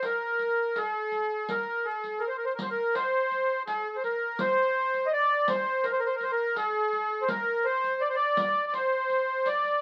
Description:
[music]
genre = Arabic maqam ensemble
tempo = 83 BPM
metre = 4/4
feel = straight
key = unclear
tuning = A4 = 440 Hz
[part]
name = accordion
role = melody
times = 0.0-9.8 s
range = Ab4+50c to Eb5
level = -28 LUFS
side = equal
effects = light tremolo tuning
[part]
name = riq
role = percussion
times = 0.0-9.7 s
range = none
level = -42 LUFS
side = equal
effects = none
[sound]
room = moderate studio reverb, RT60 0.7 s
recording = very old 78 rpm record, vinyl crackle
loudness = -28 LUFS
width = mono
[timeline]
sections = 0.0-9.8 A section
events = none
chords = none

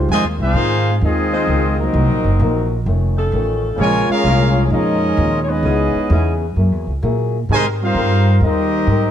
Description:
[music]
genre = jazz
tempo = 130 BPM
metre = 4/4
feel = swing 68% on 8ths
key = F minor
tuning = A4 = 440 Hz
[part]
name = upright bass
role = bass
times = 0.0-9.1 s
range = F1 to Bb2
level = -17 LUFS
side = equal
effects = none
[part]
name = clear trumpet section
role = melody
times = 0.1-9.1 s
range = C4 to Ab5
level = -20 LUFS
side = equal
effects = none
[part]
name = warm trombone section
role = second line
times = 0.1-9.1 s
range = C3 to F4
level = -20 LUFS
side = right 1 dB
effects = none
[part]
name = fingerpicked old ladder-braced acoustic guitar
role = accompaniment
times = 0.1-9.1 s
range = F2 to Bb4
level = -25 LUFS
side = left 5 dB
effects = none
[part]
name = dark saxophone section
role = sustained chords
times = 1.3-6.3 s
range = Fb3 to C5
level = -25 LUFS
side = left 1 dB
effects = none
[sound]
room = light reverb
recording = dark, warm production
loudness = -14 LUFS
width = side -10 dB against mid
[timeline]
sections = 0.1-9.1 A section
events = none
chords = 0.1 Fm7; 1.9 Cm7b5; 2.9 Faug7; 3.8 Bbm7; 5.6 Dbm7; 6.6 Gb9; 7.5 Abmaj9

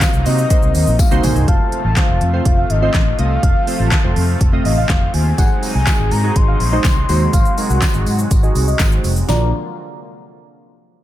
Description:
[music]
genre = dance-pop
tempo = 123 BPM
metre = 4/4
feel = straight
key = unclear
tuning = A4 = 440 Hz
[part]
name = soft octave-layered synth lead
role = melody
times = 0.0-9.5 s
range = Eb5 to C6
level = -24 LUFS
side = left 5 dB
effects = chorus, tremolo, low-pass filter, ping-pong delay
[part]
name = glassy digital keys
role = accompaniment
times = 0.0-9.5 s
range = Ab3 to Eb5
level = -24 LUFS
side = right 2 dB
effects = chorus, sidechain pumping, low-pass filter
[part]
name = lush unison pad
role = sustained chords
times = 0.0-9.5 s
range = C3 to Gb4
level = -26 LUFS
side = right 1 dB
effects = chorus, sidechain pumping, low-pass filter
[part]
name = deep house drum kit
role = drums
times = 0.0-9.4 s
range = handclaps, hi-hat, kick drum, shaker, snare drum, toms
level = -16 LUFS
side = equal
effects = overdrive
[part]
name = tambourine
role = percussion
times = 0.0-1.4, 5.4-9.5 s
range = none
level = -33 LUFS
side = left 10 dB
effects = none
[part]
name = vintage muted fingered electric bass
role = bass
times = 0.1-9.5 s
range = F1 to C3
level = -17 LUFS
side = equal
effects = sidechain pumping
[part]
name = airy dreamy lead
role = melody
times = 1.5-9.5 s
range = D5 to A5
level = -27 LUFS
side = right 1 dB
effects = chorus, sidechain pumping, low-pass filter, ping-pong delay
[sound]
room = little or no reverb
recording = none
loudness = -13 LUFS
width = side -13 dB against mid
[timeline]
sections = 0.0-1.5 A section; 1.5-9.3 B section; 9.3-11.0 C section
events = drum fill 1.0-1.5; filter sweep 1.5-9.3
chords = 0.0 Cm7b5; 1.5 F; 5.4 Ab7; 9.3 Bb

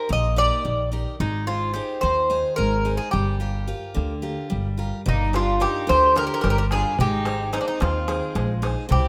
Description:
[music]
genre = greek folk, Greek bouzouki band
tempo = 218 BPM (eighths)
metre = 7/8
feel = straight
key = G phrygian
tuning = A4 = 439 Hz
[part]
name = Greek bouzouki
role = melody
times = 0.0-9.1 s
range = D4 to Eb5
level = -25 LUFS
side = equal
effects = none
[part]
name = picked steel-string acoustic guitar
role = accompaniment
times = 0.0-9.1 s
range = D3 to C5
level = -31 LUFS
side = equal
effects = none
[part]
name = upright bass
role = bass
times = 0.1-9.1 s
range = G1 to Eb2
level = -27 LUFS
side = equal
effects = none
[part]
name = warm violin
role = second line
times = 5.1-9.1 s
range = Bb3 to G4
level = -37 LUFS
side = equal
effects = none
[part]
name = darbuka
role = percussion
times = 5.1-9.0 s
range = none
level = -32 LUFS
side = equal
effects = none
[sound]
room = moderate lush hall reverb, RT60 2.4 s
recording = rough home demo mix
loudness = -23 LUFS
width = mono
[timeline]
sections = 0.0-5.1 A section; 5.1-9.1 A section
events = none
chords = 0.0 Eb; 1.2 Ab; 3.1 Gm7; 5.1 Gm; 7.0 Ab

